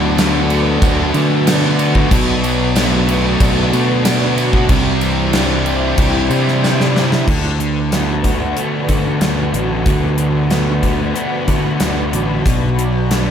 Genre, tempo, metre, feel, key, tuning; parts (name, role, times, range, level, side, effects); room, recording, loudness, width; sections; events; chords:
rock, shoegaze and dream pop; 93 BPM; 4/4; straight; D mixolydian; A4 = 441 Hz
soft string machine; sustained chords; 0.0-13.3 s; E4 to B5; -24 LUFS; right 1 dB; phaser, ensemble chorus
overdriven semi-hollow guitar; riff; 0.0-13.3 s; B2 to F#4; -21 LUFS; right 9 dB; reverse reverb
thick fuzz guitar; riff; 0.0-13.3 s; B2 to F#4; -20 LUFS; left 10 dB; distortion, lush chorus
tight distorted guitar; riff; 0.0-7.3 s; B2 to D4; -21 LUFS; right 1 dB; distortion
fuzz fingered electric bass; bass; 0.0-13.3 s; A1 to D3; -18 LUFS; equal; overdrive
gated 80s drum kit; drums; 0.2-13.3 s; crash cymbal, hi-hat, kick drum, snare drum; -18 LUFS; equal
tambourine; percussion; 0.2-7.1 s; -32 LUFS; right 11 dB
light reverb; -13 LUFS; side -8 dB against mid
0.0-7.3 A section; 7.3-13.3 B section
drum fill 6.6-7.3
0.0 D6; 2.1 Bm7; 4.7 Cadd9; 7.3 D6; 12.5 Bm7